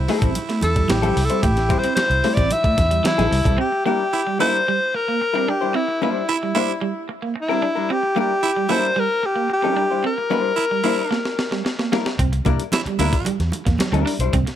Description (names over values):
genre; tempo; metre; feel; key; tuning
funk; 112 BPM; 4/4; straight; unclear; A4 = 439 Hz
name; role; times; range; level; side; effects
raspy baritone saxophone; second line; 0.0-13.3 s; E4; -27 LUFS; right 6 dB; none
vintage muted fingered electric bass; bass; 0.0-3.6, 12.2-14.4 s; A1 to E2; -21 LUFS; equal; none
vintage hollow-body jazz guitar; accompaniment; 0.1-14.3 s; G3 to C5; -25 LUFS; left 10 dB; none
electric guitar at the edge of break-up; riff; 0.1-14.5 s; E3 to D4; -26 LUFS; right 5 dB; tremolo
breakbeat sampler-style drum kit; drums; 0.1-3.6, 11.1-14.6 s; hi-hat, kick drum, snare drum; -23 LUFS; equal; none
congas; percussion; 0.4-3.3, 12.4-14.5 s; none; -28 LUFS; right 3 dB; none
breathy alto saxophone; melody; 0.6-11.6 s; E4 to E5; -21 LUFS; left 1 dB; tape echo
room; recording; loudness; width
little or no reverb; none; -18 LUFS; side -10 dB against mid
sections
0.0-3.6 A section; 3.6-14.6 B section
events
alto saxophone solo 0.0-3.6; drum fill 11.1-12.2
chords
0.0 Am7; 3.6 C9